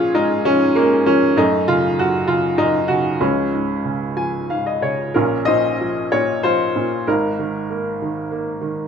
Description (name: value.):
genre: classical, lyrical solo piano.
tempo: 96 BPM.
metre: 3/4.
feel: rubato.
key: Db major, Bb minor from 5.2 s.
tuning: A4 = 440 Hz.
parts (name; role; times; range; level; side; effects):
bright upright piano; solo; 0.0-8.9 s; Ab1 to Ab5; -16 LUFS; equal; none.
room: light reverb.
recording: close, detailed microphones.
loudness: -16 LUFS.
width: side -7 dB against mid.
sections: 0.0-5.2 A section; 5.2-8.9 B section.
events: upright piano fill 3.9-5.2.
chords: 0.0 Bbm7; 1.4 Gbm; 3.2 Db; 5.2 Bbmadd9; 7.1 Absus2.